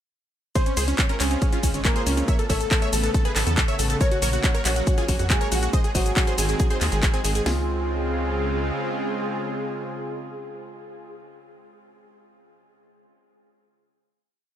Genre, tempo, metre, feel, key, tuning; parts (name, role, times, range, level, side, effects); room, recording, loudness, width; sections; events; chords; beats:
uplifting trance; 139 BPM; 4/4; straight; Db major; A4 = 440 Hz
supersaw stab; melody; 0.6-11.2 s; C4 to E5; -29 LUFS; right 1 dB; sidechain pumping, ping-pong delay
warm concert grand piano; second line; 0.6-11.2 s; Gb3 to Db5; -32 LUFS; left 1 dB; digital delay
wide unison pluck; second line; 0.6-11.2 s; Db5 to E6; -38 LUFS; equal
supersaw pad; sustained chords; 0.9-11.2 s; Db3 to F4; -31 LUFS; equal; vintage 12-bit sampler grit, sidechain pumping
house drum kit; drums; 0.6-7.6 s; hi-hat, kick drum, snare drum; -22 LUFS; equal
house drum kit; drums; 0.6-7.4 s; handclaps, hi-hat, ride cymbal, shaker; -27 LUFS; left 1 dB
tight sequencer bass; bass; 0.8-8.7 s; Ab1 to F2; -25 LUFS; equal; sidechain pumping
little or no reverb; -20 LUFS; side -10 dB against mid
0.6-7.5 drop; 7.5-10.9 final chord
drop 0.6-7.5
0.6 Dbmaj7; 2.3 Aadd9; 4.0 Gb/Bb; 5.7 Ab; 7.5 Dbmaj7
| 0.55 0.99 1.42 1.85 | 2.28 2.71 3.14 3.58 | 4.01 4.44 4.87 5.30 | 5.73 6.17 6.60 7.03 | 7.46 7.89 8.32 8.76 | 9.19 9.62 10.05 10.48